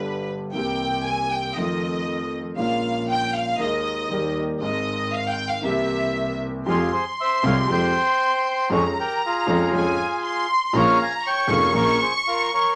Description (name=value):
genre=tango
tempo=118 BPM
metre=4/4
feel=rubato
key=F minor from 6.7 s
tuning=A4 = 440 Hz
part: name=clear studio violin section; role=second line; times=0.0-12.8 s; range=B4 to Db6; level=-28 LUFS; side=equal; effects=none
part: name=warm concert grand piano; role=accompaniment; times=0.0-12.0 s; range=F1 to Ab4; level=-27 LUFS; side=equal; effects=none
part: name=clear double bass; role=bass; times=0.0-12.0 s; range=F1 to F2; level=-31 LUFS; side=equal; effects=none
part: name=bandoneon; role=melody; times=6.7-12.8 s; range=F4 to Ab5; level=-24 LUFS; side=equal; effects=none
room=wet studio ambience, RT60 0.5 s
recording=none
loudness=-23 LUFS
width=mono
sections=0.0-6.7 A section; 6.7-12.8 B section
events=violin section solo 0.0-6.7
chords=0.0 G; 0.6 C7; 1.6 F7; 2.6 Bbm7; 3.6 Ebsus4; 4.1 Eb; 4.6 Ab; 5.6 C7; 6.7 Fmadd9; 8.7 Db/F; 10.7 Bbm7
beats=0.05 | 0.56 1.07 1.58 2.08 | 2.59 3.10 3.61 4.12 | 4.62 5.13 5.65 6.16 | 6.67 7.18 7.69 8.20 | 8.71 9.22 9.73 10.23 | 10.74 11.24 11.75 12.25